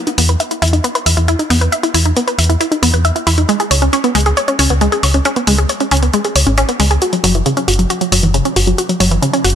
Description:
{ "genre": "uplifting trance", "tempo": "136 BPM", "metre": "4/4", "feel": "straight", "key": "unclear", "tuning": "A4 = 441 Hz", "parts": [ { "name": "wide unison pluck", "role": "arpeggios", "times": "0.0-9.5 s", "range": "C#3 to E5", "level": "-14 LUFS", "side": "equal", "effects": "ping-pong delay" }, { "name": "electronic hi-hat", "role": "drums", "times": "0.1-9.6 s", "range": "none", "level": "-18 LUFS", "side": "left 1 dB", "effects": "none" }, { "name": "solid FM bass", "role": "bass", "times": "0.2-9.6 s", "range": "F#1 to E2", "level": "-14 LUFS", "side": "equal", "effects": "tube saturation" } ], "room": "light reverb", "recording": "none", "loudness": "-11 LUFS", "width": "side -8 dB against mid", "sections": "0.0-9.6 A section", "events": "build-up 0.0-9.6; filter sweep on synth arpeggio sound 0.0-9.6", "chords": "0.0 E5; 3.5 C#5; 7.0 F#5", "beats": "0.40 0.84 1.28 | 1.72 2.17 2.61 3.05 | 3.49 3.93 4.37 4.81 | 5.25 5.70 6.14 6.58 | 7.02 7.46 7.90 8.34 | 8.78 9.22" }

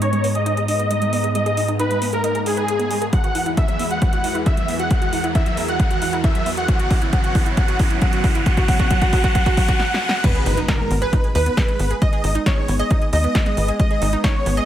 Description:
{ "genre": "uplifting trance", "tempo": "135 BPM", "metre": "4/4", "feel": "straight", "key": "G# minor", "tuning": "A4 = 439 Hz", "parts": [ { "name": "dense compressed supersaw", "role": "melody", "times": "0.0-14.7 s", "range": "G#4 to F#5", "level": "-23 LUFS", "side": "equal", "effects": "cassette tape, sidechain pumping, low-pass filter, tape echo" }, { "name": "analog string pad", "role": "sustained chords", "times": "0.0-14.7 s", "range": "E2 to A#5", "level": "-26 LUFS", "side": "equal", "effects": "ensemble chorus, vintage 12-bit sampler grit, sidechain pumping" }, { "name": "analog pluck", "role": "arpeggios", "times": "0.0-14.6 s", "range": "F#3 to B4", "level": "-28 LUFS", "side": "right 2 dB", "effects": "chorus, sidechain pumping, tape echo" }, { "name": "big-room dance drum kit", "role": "drums", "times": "0.0-14.7 s", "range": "crash cymbal, hi-hat, snare drum", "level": "-28 LUFS", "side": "right 1 dB", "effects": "sidechain pumping on hats, sidechain pumping on cymbals" }, { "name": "riser and impact", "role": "sound effects", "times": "0.0-12.0 s", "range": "none", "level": "-28 LUFS", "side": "equal", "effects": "none" }, { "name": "electronic kick drum", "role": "drums", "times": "3.1-14.3 s", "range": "none", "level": "-18 LUFS", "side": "equal", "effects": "overdrive" }, { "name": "analog pluck", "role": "second line", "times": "10.2-14.7 s", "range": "A#4 to D#5", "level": "-29 LUFS", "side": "right 2 dB", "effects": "none" }, { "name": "tight sequencer bass", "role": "bass", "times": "10.5-14.6 s", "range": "G#1 to D#2", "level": "-20 LUFS", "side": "equal", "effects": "sidechain pumping" } ], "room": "light reverb, digital ambience", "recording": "faint mains hum", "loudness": "-16 LUFS", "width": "side -11 dB against mid", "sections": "0.0-10.2 A section; 10.2-14.7 B section", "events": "build-up 0.0-10.2; riser 0.0-10.2; filter sweep on synth arpeggio sound 0.0-10.2; drum fill 3.1-9.8, 9.8-10.2; break 9.8-10.2; drop 10.2-14.7; impact 10.2-12.0", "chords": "0.0 G#madd9; 3.1 Eadd9; 6.7 F#sus4; 10.2 G#m", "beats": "0.02 0.46 0.91 | 1.35 1.79 2.24 2.68 | 3.13 3.57 4.02 4.46 | 4.91 5.35 5.79 6.24 | 6.68 7.13 7.57 8.02 | 8.46 8.91 9.35 9.79 | 10.24 10.68 11.13 11.57 | 12.02 12.46 12.91 13.35 | 13.79 14.24" }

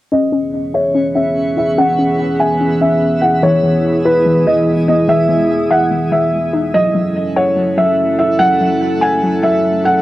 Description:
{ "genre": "hip hop", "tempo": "145 BPM", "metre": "4/4", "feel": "half-time", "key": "unclear", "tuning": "A4 = 440 Hz", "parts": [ { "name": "felt-muted upright piano", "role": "melody", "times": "0.1-10.0 s", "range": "B4 to G#5", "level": "-14 LUFS", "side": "equal", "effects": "low-pass filter, cassette tape, tape echo" }, { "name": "dark analog pad", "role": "sustained chords", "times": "0.1-10.0 s", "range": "E3 to A4", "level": "-17 LUFS", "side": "right 1 dB", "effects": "chorus, low-pass filter, cassette tape" }, { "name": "warbly dusty pluck", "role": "arpeggios", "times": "0.1-10.0 s", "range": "E3 to F#5", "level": "-19 LUFS", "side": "left 3 dB", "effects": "chorus, low-pass filter, cassette tape, tape echo" }, { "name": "twinkling granular texture", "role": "texture", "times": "0.8-10.0 s", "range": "G#3 to D#6", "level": "-27 LUFS", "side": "right 2 dB", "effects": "built-in reverb, cassette tape" } ], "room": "moderate studio reverb, RT60 0.6 s", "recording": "home recording on cassette", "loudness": "-12 LUFS", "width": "side -16 dB against mid", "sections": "0.1-10.0 A section", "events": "filter sweep 0.1-10.0", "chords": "0.1 C#m7; 3.4 Emaj7; 6.7 F#m7", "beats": "| 0.12 0.53 0.95 1.36 | 1.78 2.19 2.60 3.02 | 3.43 3.85 4.26 4.67 | 5.09 5.50 5.91 6.33 | 6.74 7.16 7.57 7.98 | 8.40 8.81 9.22 9.64" }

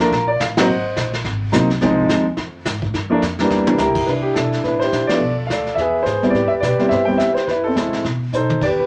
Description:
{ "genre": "jazz piano trio", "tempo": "212 BPM", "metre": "4/4", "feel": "swing 59% on 8ths", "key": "C major from 4.1 s", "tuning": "A4 = 440 Hz", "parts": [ { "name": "warm baby grand piano", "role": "melody", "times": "0.0-8.9 s", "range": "E3 to G5", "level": "-19 LUFS", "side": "equal", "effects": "none" }, { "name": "upright bass", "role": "bass", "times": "0.0-8.9 s", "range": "Ab1 to B2", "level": "-28 LUFS", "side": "equal", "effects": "none" }, { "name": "vintage brush drum kit", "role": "drums", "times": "0.0-8.9 s", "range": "brushed snare drum, crash cymbal, hi-hat, kick drum, ride cymbal, snare drum, toms", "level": "-27 LUFS", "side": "equal", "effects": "none" } ], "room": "moderate studio ambience, RT60 0.5 s", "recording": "lossy compression artefacts", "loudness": "-18 LUFS", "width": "mono", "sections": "0.0-4.1 A section; 4.1-8.9 B section", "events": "band accent 0.5, 5.1; drum fill 3.5, 8.3", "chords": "0.0 Gm9 (rootless); 0.7 Ab7; 1.8 Dbmaj7 (rootless); 2.9 Gm7; 3.5 C7; 4.1 Cmaj9; 5.2 Bm7b5; 5.8 E; 6.3 Am9 (rootless); 7.5 F#m7b5; 8.0 B7b9", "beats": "0.11 0.39 | 0.68 0.96 1.24 1.52 | 1.81 2.09 2.37 2.65 | 2.94 3.22 3.50 3.79 | 4.07 4.35 4.64 4.92 | 5.21 5.49 5.77 6.06 | 6.34 6.62 6.91 7.19 | 7.47 7.76 8.04 8.33 | 8.61" }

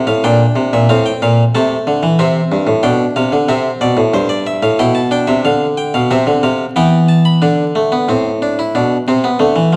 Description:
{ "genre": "classical, baroque-style 3-part fugue for harpsichord", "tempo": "92 BPM", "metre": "4/4", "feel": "straight", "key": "unclear", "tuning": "A4 = 440 Hz", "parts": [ { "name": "harpsichord", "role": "solo", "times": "0.0-9.8 s", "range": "G2 to B5", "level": "-14 LUFS", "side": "equal", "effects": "none" } ], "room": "wet recital hall reverb, RT60 1.4 s", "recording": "dark, warm production, vinyl crackle", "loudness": "-14 LUFS", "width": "mono", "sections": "0.0-7.4 A section; 7.4-9.8 B section", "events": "none", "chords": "0.0 F/A; 2.2 C; 4.8 G7/B; 6.1 C; 7.4 D5; 8.8 G/B (rootless)", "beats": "0.24 0.89 1.54 | 2.19 2.84 3.49 4.14 | 4.79 5.44 6.10 6.76 | 7.43 8.09 8.75 9.41" }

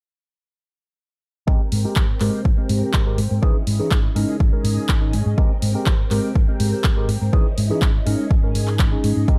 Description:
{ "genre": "filtered disco house", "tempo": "123 BPM", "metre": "4/4", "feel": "straight", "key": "Ab major", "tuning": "A4 = 440 Hz", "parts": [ { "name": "tine electric piano", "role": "accompaniment", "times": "1.5-9.4 s", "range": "Fb3 to Bb4", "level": "-28 LUFS", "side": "equal", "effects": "phaser, vintage 12-bit sampler grit, sidechain pumping, low-pass filter" }, { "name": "string machine, full ensemble", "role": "sustained chords", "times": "1.5-9.4 s", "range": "C4 to G5", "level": "-35 LUFS", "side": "equal", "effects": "phaser, ensemble chorus, sidechain pumping, low-pass filter" }, { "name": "hollow-body short-scale fingered electric bass", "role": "bass", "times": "1.5-9.4 s", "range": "Ab1 to Ab2", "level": "-24 LUFS", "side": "equal", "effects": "sidechain pumping, low-pass filter" }, { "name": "electronic kick drum", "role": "drums", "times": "1.5-9.4 s", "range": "none", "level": "-21 LUFS", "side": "equal", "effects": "overdrive, studio reverb" }, { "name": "tambourine", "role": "percussion", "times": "1.5-9.4 s", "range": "none", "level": "-59 LUFS", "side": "equal", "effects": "none" }, { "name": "punchy analog drum machine", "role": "drums", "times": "1.7-9.4 s", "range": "handclaps, hi-hat", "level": "-31 LUFS", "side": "equal", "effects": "overdrive, sidechain pumping on hats, studio reverb" } ], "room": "little or no reverb", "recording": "dark, warm production", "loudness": "-19 LUFS", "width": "mono", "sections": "1.5-9.4 A section", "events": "filter sweep 1.5-9.4", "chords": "1.5 Abmaj9; 3.4 Dbmadd9; 4.2 Eb7sus4/Ab; 5.4 Abmaj9; 7.3 Dbmadd9; 8.1 Eb7sus4/Ab", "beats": "| 1.48 1.97 2.45 2.94 | 3.43 3.92 4.41 4.89 | 5.38 5.87 6.36 6.84 | 7.33 7.82 8.31 8.79 | 9.28" }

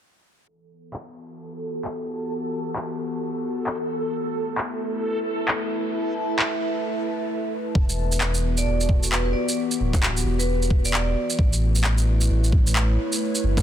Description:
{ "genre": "future garage", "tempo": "132 BPM", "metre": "4/4", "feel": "swing 61% on 16ths", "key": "E dorian", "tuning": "A4 = 440 Hz", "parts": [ { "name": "warbly tape-like pad", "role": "sustained chords", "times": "1.2-13.6 s", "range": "E3 to E5", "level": "-28 LUFS", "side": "left 1 dB", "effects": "chorus, built-in reverb, sidechain pumping" }, { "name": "backwards swelling texture", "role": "texture", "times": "1.5-7.3 s", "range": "A4", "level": "-31 LUFS", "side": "right 1 dB", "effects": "built-in reverb" }, { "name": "electronic handclaps, shaker and bongos", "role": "drums", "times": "0.9-13.6 s", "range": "none", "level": "-27 LUFS", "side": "equal", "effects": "studio reverb" }, { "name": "warm sub bass", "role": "bass", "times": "7.8-13.6 s", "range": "D1 to A1", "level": "-22 LUFS", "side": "equal", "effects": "none" }, { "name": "electronic kick drum", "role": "drums", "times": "7.8-13.6 s", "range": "none", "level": "-20 LUFS", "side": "equal", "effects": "studio reverb" }, { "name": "vibraphone with medium hard mallets", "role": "melody", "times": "8.6-11.4 s", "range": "B4 to D5", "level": "-31 LUFS", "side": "right 3 dB", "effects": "vintage 12-bit sampler grit, tape echo" } ], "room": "little or no reverb", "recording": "dense, heavily limited modern master, low-pass filter", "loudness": "-21 LUFS", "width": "side -10 dB against mid", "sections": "0.5-7.8 A section; 7.8-13.6 B section", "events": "fade-in on ambient pad 0.5-7.8; filter sweep 0.5-7.8", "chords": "0.5 Em; 4.1 A5; 7.8 Em7; 11.4 A7", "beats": "| 0.48 0.94 1.39 1.85 | 2.30 2.76 3.21 3.67 | 4.12 4.57 5.03 5.48 | 5.94 6.39 6.85 7.30 | 7.76 8.21 8.66 9.12 | 9.57 10.03 10.48 10.94 | 11.39 11.85 12.30 12.76 | 13.21" }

